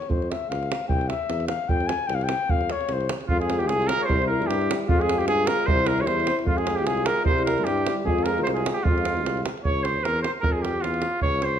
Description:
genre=balkan folk, Balkan brass band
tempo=151 BPM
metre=2/4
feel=swing 55% on 16ths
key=F harmonic minor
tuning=A4 = 442 Hz
part: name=mellow flugelhorn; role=second line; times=0.0-11.6 s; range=F4 to Ab5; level=-29 LUFS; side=left 7 dB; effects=none
part: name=davul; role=percussion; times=0.0-11.5 s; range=none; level=-28 LUFS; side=right 2 dB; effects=none
part: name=warm tuba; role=bass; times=0.1-11.6 s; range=C2 to G2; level=-28 LUFS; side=equal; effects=none
part: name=warm trumpet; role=melody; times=3.3-11.6 s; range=F4 to Db5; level=-26 LUFS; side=right 3 dB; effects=none
part: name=clear French horn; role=accompaniment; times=3.3-9.5 s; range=E4 to F4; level=-30 LUFS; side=left 8 dB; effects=none
part: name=mellow euphonium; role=accompaniment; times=3.3-9.5 s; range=G3 to Ab3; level=-31 LUFS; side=right 7 dB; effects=none
room=moderate recital hall reverb, RT60 1.4 s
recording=none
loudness=-21 LUFS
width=side -9 dB against mid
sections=0.0-3.3 A section; 3.3-9.6 B section; 9.6-11.6 C section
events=flugelhorn solo 0.0-3.3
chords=0.1 Dbmaj7; 0.9 C; 1.7 F5; 3.3 Fm; 4.1 C; 4.9 Fm; 5.7 C; 6.5 Fm; 7.3 C; 8.0 Fm; 9.6 Dbmmaj7; 10.4 Gm7

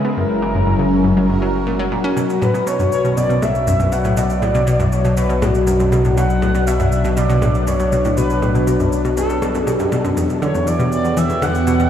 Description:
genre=ambient, sequencer-driven space music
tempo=120 BPM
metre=4/4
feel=straight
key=B minor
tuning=A4 = 444 Hz
part: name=expressive synth lead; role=melody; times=0.0-11.9 s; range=F#4 to F#5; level=-21 LUFS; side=equal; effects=lush chorus, shimmer reverb, tape echo
part: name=phased analog pad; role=sustained chords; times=0.0-11.9 s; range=B2 to A#4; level=-19 LUFS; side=left 1 dB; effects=phaser, chorus
part: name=analog pluck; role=riff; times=0.0-11.9 s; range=E2 to C#4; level=-20 LUFS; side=equal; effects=chorus, tape echo
part: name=round analog bass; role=bass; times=0.0-11.9 s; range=F#1 to E2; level=-23 LUFS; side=equal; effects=none
part: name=cabasa and percussion blips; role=percussion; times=2.2-11.9 s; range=none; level=-31 LUFS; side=right 1 dB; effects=overdrive, tape echo
room=wet huge ambient reverb, RT60 8.8 s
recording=played on a big sound system in a bare room, large studio reverb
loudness=-14 LUFS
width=side -10 dB against mid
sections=0.0-2.2 A section; 2.2-11.9 B section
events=filter sweep on synth arpeggio sound 0.0-2.2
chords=0.2 F#7; 2.2 Bm; 10.2 Em

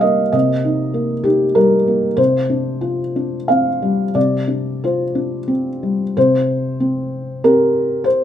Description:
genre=neoclassical minimalist piano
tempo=88-98 BPM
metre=3/4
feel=rubato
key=C minor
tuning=A4 = 440 Hz
part: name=felt-muted upright piano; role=solo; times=0.0-8.2 s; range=C3 to F5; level=-15 LUFS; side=equal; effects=none
room=moderate studio reverb, RT60 0.6 s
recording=minimal, uncompressed stereo recording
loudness=-15 LUFS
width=side -10 dB against mid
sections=0.0-6.2 A section; 6.2-8.2 B section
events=none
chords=0.0 Cm7; 2.2 G7sus4/C; 6.2 C5

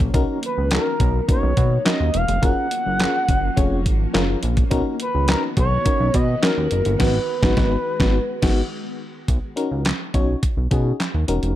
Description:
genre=early-eighties boogie funk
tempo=105 BPM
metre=4/4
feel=straight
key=unclear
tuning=A4 = 442 Hz
part: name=soft string machine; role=sustained chords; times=0.0-9.3 s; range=D#3 to F#4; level=-31 LUFS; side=equal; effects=phaser, ensemble chorus
part: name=chorused synth bass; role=bass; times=0.0-11.5 s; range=E1 to B2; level=-21 LUFS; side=equal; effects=none
part: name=detuned 8-bit digital drum machine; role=drums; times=0.0-11.6 s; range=crash cymbal, handclaps, hi-hat, kick drum, snare drum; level=-21 LUFS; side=equal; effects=none
part: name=FM electric piano with tremolo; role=accompaniment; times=0.1-11.5 s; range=B3 to C#5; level=-26 LUFS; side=left 3 dB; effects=none
part: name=expressive synth lead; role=melody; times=0.5-9.0 s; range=A#4 to F#5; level=-24 LUFS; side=equal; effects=chorus
room=light reverb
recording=dark, warm production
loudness=-18 LUFS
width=side -13 dB against mid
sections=0.0-9.3 A section; 9.3-11.6 B section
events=band accent 7.0-9.3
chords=0.1 Bmaj7; 2.4 F#maj7; 4.7 Bmaj7; 7.0 G#m7; 9.3 Bmaj7

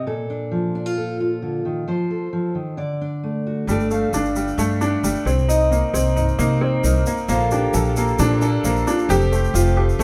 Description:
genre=indie folk with a building arrangement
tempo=133 BPM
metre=4/4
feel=straight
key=G minor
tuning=A4 = 440 Hz
part: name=fingerpicked steel-string acoustic guitar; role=accompaniment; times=0.0-10.0 s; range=G2 to F5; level=-26 LUFS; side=equal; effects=none
part: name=clear upright piano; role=arpeggios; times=3.7-10.0 s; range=G3 to A4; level=-24 LUFS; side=equal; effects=none
part: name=upright bass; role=bass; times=3.7-10.0 s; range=F1 to C3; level=-23 LUFS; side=equal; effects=none
part: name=egg shaker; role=percussion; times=3.7-10.0 s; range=none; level=-35 LUFS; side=equal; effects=none
part: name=picked old ladder-braced acoustic guitar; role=accompaniment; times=7.3-10.0 s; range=Bb2 to A4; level=-27 LUFS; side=equal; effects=none
room=moderate large studio reverb, RT60 1.1 s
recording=band playing live in one room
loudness=-20 LUFS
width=mono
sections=0.0-3.7 A section; 3.7-10.0 B section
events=none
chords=0.1 Bbmaj7; 1.9 F; 2.8 D; 3.7 Gsus2; 5.3 Cm7; 7.3 Bbmaj7; 9.1 Fadd9

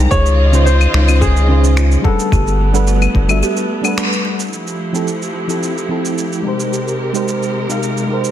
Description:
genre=sunset chillout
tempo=109 BPM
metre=4/4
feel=straight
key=unclear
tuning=A4 = 435 Hz
part: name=mellow FM electric piano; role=accompaniment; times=0.0-8.3 s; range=Db3 to F#5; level=-19 LUFS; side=moving between left 5 dB and right 5 dB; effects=chorus, tremolo, auto-pan, digital delay
part: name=warm studio string section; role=sustained chords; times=0.0-8.3 s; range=C3 to Eb5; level=-22 LUFS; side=equal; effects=none
part: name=kalimba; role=arpeggios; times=0.0-4.5 s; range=D4 to B4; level=-26 LUFS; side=right 1 dB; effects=digital delay
part: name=round analog bass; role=bass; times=0.0-3.4 s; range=G1 to Db2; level=-12 LUFS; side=equal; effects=tube saturation
part: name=warm concert grand piano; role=melody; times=0.1-4.2 s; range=Ab4 to Db5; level=-21 LUFS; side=left 2 dB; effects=digital delay
part: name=electronic kick drum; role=drums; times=0.1-3.3 s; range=none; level=-15 LUFS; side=equal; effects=overdrive
part: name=electronic shaker, claves and finger snaps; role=drums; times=0.1-8.3 s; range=none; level=-23 LUFS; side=left 1 dB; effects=overdrive, soft clipping on snare
room=moderate recital hall reverb, RT60 1.5 s, studio reverb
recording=dense, heavily limited modern master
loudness=-13 LUFS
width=side -11 dB against mid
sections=0.0-4.5 A section; 4.5-8.3 B section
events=break 3.4-4.5; band accent 4.0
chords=0.1 Dbmaj9; 2.0 Gmaj9; 4.5 Fmaj9; 6.4 Abmaj9

